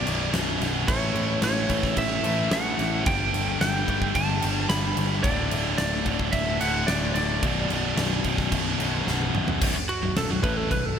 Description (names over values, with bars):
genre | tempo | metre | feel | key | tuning
hard rock | 110 BPM | 4/4 | straight | B minor | A4 = 441 Hz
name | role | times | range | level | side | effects
lightly driven lead guitar | melody | 0.0-11.0 s | F#4 to B5 | -29 LUFS | right 2 dB | none
high-gain distorted guitar | riff | 0.0-10.9 s | B1 to A3 | -30 LUFS | left 10 dB | distortion
high-gain distorted guitar | riff | 0.0-10.9 s | B1 to A3 | -30 LUFS | right 9 dB | distortion
picked electric bass | bass | 0.0-11.0 s | B0 to A1 | -29 LUFS | equal | none
huge arena drum kit | drums | 0.1-10.8 s | crash cymbal, kick drum, snare drum, toms | -27 LUFS | equal | none
room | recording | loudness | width
moderate lush hall reverb, RT60 2.5 s | bright 1980s-style digital production | -22 LUFS | side -8 dB against mid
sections
0.0-9.6 A section; 9.6-11.0 B section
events
drum fill 9.1-9.6; lead electric guitar solo 9.6-11.0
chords
0.0 Bm; 0.9 A; 3.1 G; 5.2 D5; 7.4 Bm; 9.6 B5